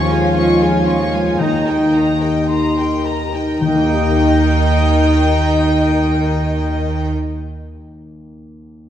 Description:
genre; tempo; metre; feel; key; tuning
cinematic, emotional film score for orchestra; 55 BPM; 4/4; rubato; Eb major; A4 = 438 Hz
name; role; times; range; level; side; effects
warm symphonic violin section; melody; 0.0-7.1 s; G5 to Db6; -25 LUFS; left 5 dB; none
dark clarinet; second line; 0.0-7.1 s; Db5 to Eb5; -27 LUFS; left 2 dB; none
dark studio violin section; second line; 0.0-7.0 s; Bb4 to Eb5; -27 LUFS; equal; none
mellow hollow flute section; second line; 0.0-7.1 s; Eb5 to F5; -29 LUFS; left 3 dB; none
warm oboe; second line; 0.0-7.1 s; G5 to C6; -26 LUFS; right 1 dB; none
rich symphonic viola section; accompaniment; 0.0-7.0 s; Eb4 to F4; -19 LUFS; equal; none
warm concert grand piano; accompaniment; 0.0-8.9 s; Eb2 to Eb5; -22 LUFS; left 1 dB; none
concert harp; arpeggios; 0.0-7.5 s; Eb3 to Eb5; -23 LUFS; left 5 dB; none
dark symphonic double bass section; bass; 0.0-7.1 s; Eb2; -19 LUFS; right 2 dB; none
warm symphonic cello section; bass; 0.0-7.1 s; Eb3 to F3; -25 LUFS; right 2 dB; none
room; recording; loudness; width
wet recital hall reverb, RT60 1.6 s; heard from further back in the room; -13 LUFS; side -10 dB against mid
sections
0.0-3.6 A section; 3.6-8.0 B section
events
slowing down 0.0-3.6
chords
0.0 Dbsus2/Eb; 1.4 Eb

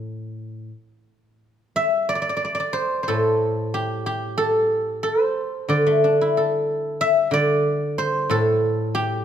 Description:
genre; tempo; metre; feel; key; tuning
chinese traditional, Chinese solo plucked strings; 91 BPM; 4/4; rubato; A yu mode; A4 = 440 Hz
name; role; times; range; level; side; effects
guzheng; solo; 0.0-9.2 s; A2 to E5; -19 LUFS; equal; none
room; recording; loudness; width
moderate recital hall reverb, RT60 1.8 s; none; -19 LUFS; side -9 dB against mid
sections
0.0-1.7 A section; 1.7-9.2 B section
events
none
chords
none

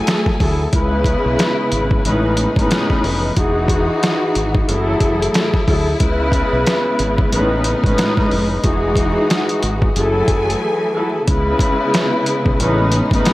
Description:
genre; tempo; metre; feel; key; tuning
hip hop, boom-bap hip-hop; 91 BPM; 4/4; swing 58% on 16ths; C# minor; A4 = 440 Hz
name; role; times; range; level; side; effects
muted studio string section; accompaniment; 0.0-13.3 s; A2 to B4; -18 LUFS; left 1 dB; cassette tape
warm studio string section; sustained chords; 0.0-13.3 s; A2 to G#5; -23 LUFS; equal; none
lo-fi sampler-style drum kit; drums; 0.1-13.3 s; hi-hat, kick drum, snare drum; -18 LUFS; equal; overdrive
deep dub fingered electric bass; bass; 0.4-13.2 s; E1 to D2; -21 LUFS; equal; tube saturation
room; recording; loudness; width
little or no reverb; dry, gritty hardware recording, vinyl crackle; -14 LUFS; side -17 dB against mid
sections
0.0-11.3 A section; 11.3-13.3 B section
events
break 10.6-11.3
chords
0.0 F#m9; 0.7 C#m7; 2.0 Amaj9#11; 3.4 Emaj9; 4.7 F#m9; 6.0 C#m7; 7.3 Amaj9#11; 8.6 Emaj9; 10.0 F#m9; 11.3 C#m7; 12.6 Amaj9#11

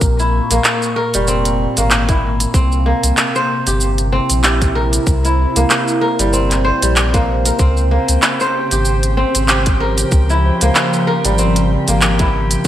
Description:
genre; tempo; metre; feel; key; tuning
organic downtempo; 95 BPM; 4/4; swing 57% on 16ths; unclear; A4 = 440 Hz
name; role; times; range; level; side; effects
warbly tape-like pad; sustained chords; 0.0-12.7 s; Bb2 to Db6; -21 LUFS; equal; chorus, built-in reverb, phaser, sidechain pumping
kora; arpeggios; 0.0-12.7 s; G3 to C5; -18 LUFS; equal; digital delay
warm sub bass; bass; 0.0-12.7 s; F1 to Db2; -16 LUFS; equal; none
electronic kick drum; drums; 0.0-12.7 s; none; -15 LUFS; equal; none
organic electronic drum kit; drums; 0.0-12.7 s; handclaps, hi-hat, shaker; -18 LUFS; right 1 dB; gated reverb
drifting glass-harmonics texture; texture; 7.8-12.7 s; G4 to G5; -28 LUFS; right 3 dB; chorus, built-in reverb
room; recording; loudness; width
moderate plate reverb, RT60 2.3 s; bright 1980s-style digital production; -12 LUFS; side -12 dB against mid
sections
0.0-12.7 A section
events
none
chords
0.0 Bbm7; 2.5 C7; 7.6 Dbmaj7

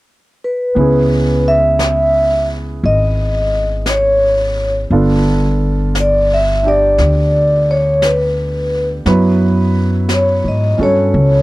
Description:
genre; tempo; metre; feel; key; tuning
jazz ballad; 58 BPM; 4/4; swing 66% on 8ths; C# minor; A4 = 440 Hz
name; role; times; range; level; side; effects
vibraphone with soft mallets; melody; 0.4-11.4 s; B4 to E5; -14 LUFS; equal; none
clear concert grand piano; accompaniment; 0.8-11.4 s; F#3 to B4; -20 LUFS; right 4 dB; none
upright bass; bass; 0.8-11.4 s; G1 to G#2; -15 LUFS; equal; none
jazz brush drum kit; drums; 0.8-11.4 s; brushed snare drum, hi-hat, snare drum; -26 LUFS; left 1 dB; none
room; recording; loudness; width
little or no reverb; dry, close 1970s-style studio recording; -11 LUFS; side -18 dB against mid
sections
0.8-11.4 A section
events
none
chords
0.0 N.C.; 0.8 C#m9; 4.9 G9; 9.1 F#m11

